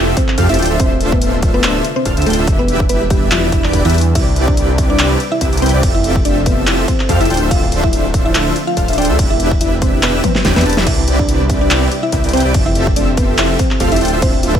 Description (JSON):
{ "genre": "future bass", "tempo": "143 BPM", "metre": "4/4", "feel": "swing 55% on 16ths, half-time", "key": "unclear", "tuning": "A4 = 439 Hz", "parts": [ { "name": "mallet-like synth pluck", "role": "melody", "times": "0.0-14.6 s", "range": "E3 to F5", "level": "-19 LUFS", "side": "equal", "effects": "chorus, sidechain pumping, digital delay" }, { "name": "airy breathy pad", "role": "sustained chords", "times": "0.0-14.6 s", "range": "C3 to E5", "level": "-28 LUFS", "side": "left 1 dB", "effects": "none" }, { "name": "airy dreamy lead", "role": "arpeggios", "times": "0.0-14.6 s", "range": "D5 to A5", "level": "-25 LUFS", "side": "left 1 dB", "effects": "chorus, phaser, sidechain pumping, digital delay" }, { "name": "dense compressed supersaw", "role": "riff", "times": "0.0-14.6 s", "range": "C4 to A5", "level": "-19 LUFS", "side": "right 1 dB", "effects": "sidechain pumping" }, { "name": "wide detuned saw bass", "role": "bass", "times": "0.0-14.6 s", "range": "D1 to F2", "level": "-17 LUFS", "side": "equal", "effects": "chorus, tube saturation, sidechain pumping" }, { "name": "big-room dance drum kit", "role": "drums", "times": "0.2-14.5 s", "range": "crash cymbal, handclaps, hi-hat, snare drum, toms", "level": "-20 LUFS", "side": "left 1 dB", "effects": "none" }, { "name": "electronic kick drum", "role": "drums", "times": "0.2-14.6 s", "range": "none", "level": "-17 LUFS", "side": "equal", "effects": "none" }, { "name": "swell", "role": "sound effects", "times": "10.2-10.9 s", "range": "none", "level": "-27 LUFS", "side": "equal", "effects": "none" }, { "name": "wide unison pluck", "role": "arpeggios", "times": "10.9-14.6 s", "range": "A3 to G4", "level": "-29 LUFS", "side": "right 4 dB", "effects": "none" } ], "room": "digital ambience", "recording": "none", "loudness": "-11 LUFS", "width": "side -9 dB against mid", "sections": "0.0-14.6 A section", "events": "drum fill 10.2-10.9", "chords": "0.0 Fmaj9; 0.6 Dm9; 2.5 Em7; 4.2 Cmaj9; 5.8 Fmaj9; 7.3 Dm9; 9.2 Em7; 10.9 Cmaj9; 12.5 Fmaj9; 14.0 Dm9" }